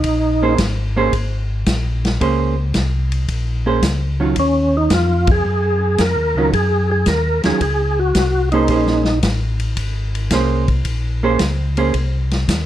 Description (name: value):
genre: soul jazz organ trio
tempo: 111 BPM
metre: 4/4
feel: swing 69% on 8ths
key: Bb minor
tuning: A4 = 439 Hz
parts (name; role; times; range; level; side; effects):
- percussive tonewheel organ; melody; 0.0-0.5, 4.4-9.2 s; Db4 to Bb4; -18 LUFS; equal; slow rotary speaker, overdrive, chorus vibrato
- mellow tonewheel organ; bass; 0.0-12.7 s; Ab1 to Gb2; -19 LUFS; left 1 dB; chorus vibrato, slow rotary speaker
- vintage drum kit; drums; 0.0-12.7 s; hi-hat, kick drum, ride cymbal, snare drum; -22 LUFS; left 1 dB; none
- vintage hollow-body jazz guitar; accompaniment; 0.4-11.9 s; Eb3 to C5; -19 LUFS; right 5 dB; none
room: light reverb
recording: dark, warm production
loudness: -15 LUFS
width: side -12 dB against mid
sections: 0.0-12.7 A section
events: band accent 5.2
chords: 0.0 Bbm9; 4.4 Ebm9; 8.7 Bbm9